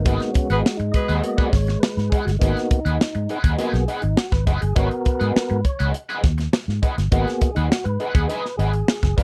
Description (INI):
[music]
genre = funk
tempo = 102 BPM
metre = 4/4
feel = straight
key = G# minor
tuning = A4 = 440 Hz
[part]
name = mellow tonewheel organ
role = stabs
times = 0.0-9.2 s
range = G#3 to D#5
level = -28 LUFS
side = equal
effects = fast rotary speaker
[part]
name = vintage muted fingered electric bass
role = bass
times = 0.0-9.2 s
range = F#1 to G#2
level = -24 LUFS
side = equal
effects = none
[part]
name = electric guitar at the edge of break-up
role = accompaniment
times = 0.1-9.2 s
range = D#4 to G#5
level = -30 LUFS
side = equal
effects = wah
[part]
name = crisp fusion drum kit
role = drums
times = 0.1-9.2 s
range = hi-hat, kick drum, snare drum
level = -22 LUFS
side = equal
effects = none
[part]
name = warm horn section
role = second line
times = 0.5-1.3 s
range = B3 to B4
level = -28 LUFS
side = equal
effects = none
[sound]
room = little or no reverb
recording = dry, close 1970s-style studio recording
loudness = -21 LUFS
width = mono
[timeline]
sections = 0.0-9.2 A section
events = tonewheel organ solo 0.0-9.2; band accent 0.1-2.4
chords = 0.0 G#m7